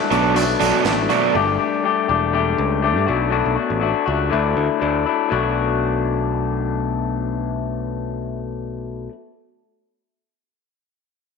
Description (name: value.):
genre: indie rock.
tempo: 121 BPM.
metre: 4/4.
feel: straight.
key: B minor.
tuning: A4 = 439 Hz.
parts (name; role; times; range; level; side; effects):
electric guitar through a small old amp; riff; 0.0-9.1 s; B2 to G4; -20 LUFS; left 10 dB; none.
overdriven electric guitar; riff; 0.1-1.3 s; B2 to D4; -20 LUFS; right 12 dB; lush chorus, tape echo.
modern bright picked electric bass; bass; 0.1-9.1 s; E1 to G2; -24 LUFS; right 2 dB; none.
raw garage drum kit; drums; 0.1-1.2 s; hi-hat, snare drum; -28 LUFS; right 8 dB; none.
room: moderate echo chamber reverb, RT60 1.4 s, studio ambience.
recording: 1960s-style stereo with parts hard left and right.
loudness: -18 LUFS.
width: side -5 dB against mid.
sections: 0.0-5.3 A section; 5.3-9.3 B section.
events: none.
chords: 0.0 Bm7; 1.3 Gsus2; 3.1 Bm7; 4.3 Dadd9; 5.3 Bm7.